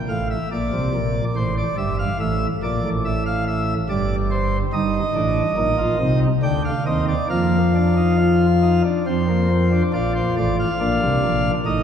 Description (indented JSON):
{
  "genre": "classical, baroque-style 3-part fugue for pipe organ",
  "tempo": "71 BPM",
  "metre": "3/4",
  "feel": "straight",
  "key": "Bb major",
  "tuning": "A4 = 440 Hz",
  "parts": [
    { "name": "pipe organ, principal chorus", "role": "solo", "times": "0.1-11.8 s", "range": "G1 to G5", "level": "-18 LUFS", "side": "equal", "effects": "none" }
  ],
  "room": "wet church reverb, RT60 2.7 s",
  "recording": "recorded in a church or concert hall",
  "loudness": "-18 LUFS",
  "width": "side -8 dB against mid",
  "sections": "0.0-9.9 A section; 9.9-11.8 B section",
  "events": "none",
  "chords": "0.0 E7(b5, no3); 1.4 Am; 2.2 Dm/A; 3.9 G5; 4.7 Eb/G; 7.3 Fsus4; 9.1 F5; 9.9 Bb",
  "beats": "0.51 1.36 | 2.21 3.05 3.89 | 4.73 5.58 6.43 | 7.31 8.19 9.07 | 9.95 10.81 11.66"
}